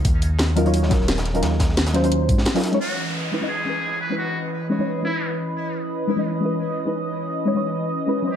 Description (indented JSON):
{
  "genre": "liquid drum and bass",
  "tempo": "174 BPM",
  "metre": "4/4",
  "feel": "swing 54% on 16ths",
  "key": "C# dorian",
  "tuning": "A4 = 440 Hz",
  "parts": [
    { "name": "deep mellow chord stab", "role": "accompaniment", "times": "0.0-8.4 s", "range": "F#3 to D#5", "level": "-23 LUFS", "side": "left 1 dB", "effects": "chorus, analog delay" },
    { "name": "smooth gliding synth bass", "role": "bass", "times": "0.0-2.5 s", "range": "D#1 to G#2", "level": "-21 LUFS", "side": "equal", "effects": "none" },
    { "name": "crunchy breakbeat drum kit", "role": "drums", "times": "0.0-2.7 s", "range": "hi-hat, snare drum", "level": "-31 LUFS", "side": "equal", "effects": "high-pass filter on hats, high-pass filter on snare, high-pass filter on room" },
    { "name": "electronic kick drum", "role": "drums", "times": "0.0-2.4 s", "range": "none", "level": "-21 LUFS", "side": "equal", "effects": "none" },
    { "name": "garage drum kit", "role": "drums", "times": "0.0-2.8 s", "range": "hi-hat, snare drum", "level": "-24 LUFS", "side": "equal", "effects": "none" },
    { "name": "trumpet with metal mute", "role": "melody", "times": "2.8-5.3, 8.3-8.4 s", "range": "E4 to B4", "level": "-30 LUFS", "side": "equal", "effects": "tape echo" },
    { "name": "lush unison pad", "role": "sustained chords", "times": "2.8-8.4 s", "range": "E3 to D#5", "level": "-26 LUFS", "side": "equal", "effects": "chorus, sidechain pumping" },
    { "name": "downlifter", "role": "sound effects", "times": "2.8-5.6 s", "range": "none", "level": "-32 LUFS", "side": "equal", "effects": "none" }
  ],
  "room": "moderate plate reverb, RT60 1.0 s, studio reverb",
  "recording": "dreamy mix soaked in reverb",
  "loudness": "-20 LUFS",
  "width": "side -9 dB against mid",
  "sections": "0.0-2.8 A section; 2.8-8.4 B section",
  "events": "filter sweep on synth stab 2.8-8.4; filter sweep on analog synth pad 2.8-8.4",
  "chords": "0.0 D#m9; 2.8 C#m9"
}